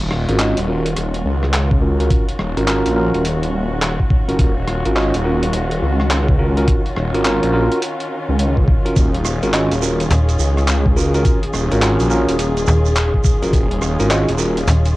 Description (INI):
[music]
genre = glitch hop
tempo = 105 BPM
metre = 4/4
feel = swing 63% on 16ths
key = Eb minor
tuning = A4 = 440 Hz
[part]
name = muted chamber string section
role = sustained chords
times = 0.0-15.0 s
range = Eb3 to Ab4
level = -24 LUFS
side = left 1 dB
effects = sidechain pumping, cassette tape
[part]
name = phased detuned saw bass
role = bass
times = 0.0-14.7 s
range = Eb1 to Db2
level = -18 LUFS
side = equal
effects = phaser, tube saturation
[part]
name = boom bap sampler-style drum kit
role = drums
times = 0.0-14.9 s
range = handclaps, hi-hat, rim click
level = -24 LUFS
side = equal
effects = none
[part]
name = bell-like tine electric piano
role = stabs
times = 0.3-14.6 s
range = Db4 to Eb5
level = -21 LUFS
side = right 1 dB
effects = sidechain pumping, low-pass filter, cassette tape, analog delay
[part]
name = electronic kick drum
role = drums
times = 1.7-13.7 s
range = none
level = -16 LUFS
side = equal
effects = none
[part]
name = shekere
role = percussion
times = 9.0-14.9 s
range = none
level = -30 LUFS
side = right 9 dB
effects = none
[part]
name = slap-like FM bass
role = bass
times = 10.1-14.9 s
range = Eb1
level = -13 LUFS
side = equal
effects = none
[sound]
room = light reverb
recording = home recording on cassette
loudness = -14 LUFS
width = side -18 dB against mid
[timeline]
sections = 0.0-15.0 A section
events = filter sweep on tine electric piano 0.0-15.0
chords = 0.0 Ebm9